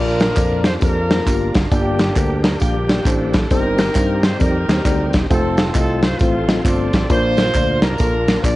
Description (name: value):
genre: uptempo gospel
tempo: 134 BPM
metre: 4/4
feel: swing 63% on 8ths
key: Bb major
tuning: A4 = 439 Hz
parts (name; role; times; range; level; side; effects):
- warm horn section; melody; 0.0-8.6 s; A3 to D5; -22 LUFS; equal; slapback echo
- mellow tine electric piano; accompaniment; 0.0-8.6 s; G2 to F5; -22 LUFS; left 2 dB; medium stereo tremolo
- bright tonewheel organ; sustained chords; 0.0-8.6 s; D3 to C5; -29 LUFS; right 1 dB; slow rotary speaker, chorus vibrato
- fingered electric bass; bass; 0.0-8.6 s; E1 to G2; -22 LUFS; equal; none
- modern studio drum kit; drums; 0.2-8.6 s; hi-hat, kick drum, snare drum; -18 LUFS; equal; none
- tambourine and handclaps; percussion; 0.2-8.6 s; none; -33 LUFS; right 2 dB; none
room: light reverb, small room reverb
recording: worn, warbling old tape, cassette tape, warbly pitch drift, nothing above 10.6 kHz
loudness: -14 LUFS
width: side -17 dB against mid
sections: 0.0-8.6 A section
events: none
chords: 0.0 Bb; 1.7 Gm; 3.5 Cm/G; 5.3 F; 7.1 Bb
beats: 0.37 0.82 1.27 | 1.72 2.17 2.62 3.06 | 3.51 3.96 4.41 4.86 | 5.31 5.76 6.20 6.65 | 7.10 7.55 8.00 8.45